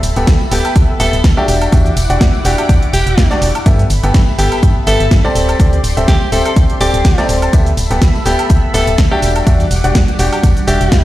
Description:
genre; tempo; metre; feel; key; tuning
piano house; 124 BPM; 4/4; swing 55% on 16ths; G major; A4 = 441 Hz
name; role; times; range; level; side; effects
analog string pad; sustained chords; 0.0-11.0 s; G3 to D6; -24 LUFS; equal; ensemble chorus, sidechain pumping
organ-like FM bass; bass; 0.0-11.0 s; D1 to G2; -15 LUFS; equal; sidechain pumping
house drum kit; drums; 0.0-11.0 s; hi-hat, shaker, snare drum, woodblock; -20 LUFS; right 1 dB; none
tambourine; percussion; 0.0-11.0 s; none; -30 LUFS; left 4 dB; none
clear grand piano; riff; 0.2-10.8 s; B3 to G5; -18 LUFS; equal; sidechain pumping, digital delay
electronic kick drum; drums; 0.3-11.0 s; none; -11 LUFS; equal; none
breathy alto saxophone; melody; 0.5-11.0 s; G4 to A4; -20 LUFS; equal; digital delay
room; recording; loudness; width
light reverb; played on a big sound system in a bare room, stone room reverb; -10 LUFS; side -15 dB against mid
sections
0.0-11.0 A section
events
none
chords
0.0 G69/D; 1.5 Em9; 3.7 G69; 5.4 D7sus4; 7.5 G69/D; 9.2 Em9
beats
0.27 0.76 1.24 | 1.73 2.21 2.69 3.18 | 3.66 4.14 4.63 5.11 | 5.60 6.08 6.56 7.05 | 7.53 8.02 8.50 8.98 | 9.47 9.95 10.44 10.92

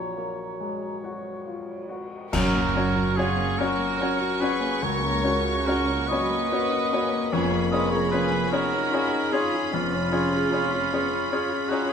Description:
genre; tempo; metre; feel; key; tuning
classical, romantic movement for piano and orchestra; 45-51 BPM (dotted quarters); 12/8; rubato; F# major; A4 = 440 Hz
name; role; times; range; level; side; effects
clear baby grand piano; melody; 0.0-11.9 s; A#1 to C#5; -27 LUFS; left 4 dB; none
mellow clarinet; second line; 0.0-2.0 s; F#4; -40 LUFS; left 2 dB; none
mellow hollow large flute ensemble; second line; 0.0-1.0 s; A#5; -37 LUFS; equal; none
warm oboe; second line; 0.0-11.9 s; E#4 to D#5; -29 LUFS; right 4 dB; none
mellow bassoon; accompaniment; 0.0-2.0 s; F#3; -38 LUFS; right 3 dB; none
rich studio violin section; melody; 2.3-11.9 s; B5 to C#6; -33 LUFS; left 2 dB; none
warm studio violin section; second line; 2.3-11.9 s; C#4 to B4; -32 LUFS; left 1 dB; none
dark chamber viola section; accompaniment; 2.3-11.9 s; F#3 to G#4; -32 LUFS; right 2 dB; none
dark studio cello section; bass; 2.3-10.7 s; C#2 to F#2; -33 LUFS; right 3 dB; none
dark studio double bass section; bass; 2.3-10.7 s; E#1 to C#2; -33 LUFS; right 5 dB; none
clash cymbals and concert bass drum; percussion; 2.3-4.0 s; none; -34 LUFS; equal; none
mellow French horn section; sustained chords; 4.8-11.9 s; A#3 to D#4; -32 LUFS; left 4 dB; none
room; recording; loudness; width
moderate recital hall reverb, RT60 1.4 s; none; -22 LUFS; side -7 dB against mid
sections
0.0-2.3 A section; 2.3-11.9 A section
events
band accent 2.3-3.2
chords
0.0 F#/A#; 2.3 F#; 7.3 C#7/E#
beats
1.02 | 2.33 3.60 4.82 6.11 | 7.33 8.52 9.73 10.91

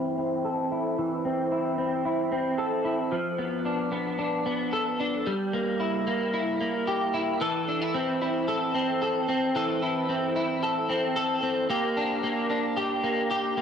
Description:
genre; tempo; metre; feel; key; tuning
dream pop; 112 BPM; 4/4; straight; unclear; A4 = 439 Hz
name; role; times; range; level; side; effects
electric guitar at the edge of break-up; solo; 0.0-13.6 s; E3 to A4; -25 LUFS; equal; ensemble chorus, low-pass filter, tape echo
room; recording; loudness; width
moderate recital hall reverb, RT60 1.6 s; dry, gritty hardware recording; -25 LUFS; side -7 dB against mid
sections
0.0-7.4 A section; 7.4-13.6 B section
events
filter sweep on clean electric guitar 0.0-7.4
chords
0.0 Am/E; 3.1 Bm7b5/F; 5.3 Gm6; 7.4 Am/E; 11.7 Bb6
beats
0.44 | 0.98 1.51 2.05 2.59 | 3.12 3.66 4.19 4.73 | 5.26 5.80 6.34 6.87 | 7.41 7.94 8.48 9.01 | 9.55 10.09 10.62 11.16 | 11.69 12.23 12.76 13.30

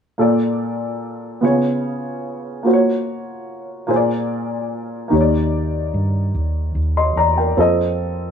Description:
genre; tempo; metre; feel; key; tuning
slow gospel; 49 BPM (dotted quarters); 6/8; straight; Bb major; A4 = 440 Hz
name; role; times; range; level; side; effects
warm upright piano; accompaniment; 0.2-8.3 s; Bb2 to C6; -18 LUFS; equal; none
hollow-body short-scale fingered electric bass; bass; 5.1-8.3 s; Eb2 to G2; -20 LUFS; right 1 dB; none
room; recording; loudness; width
moderate studio reverb, RT60 0.8 s; band playing live in one room; -16 LUFS; side -7 dB against mid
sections
0.2-8.3 A section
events
none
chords
0.2 Bbmaj7; 1.4 Db7; 2.7 Gbmaj7; 3.9 Bb7; 5.1 Ebmaj7; 7.6 F7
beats
| 0.19 1.43 | 2.66 3.89 | 5.12 6.35 | 7.58

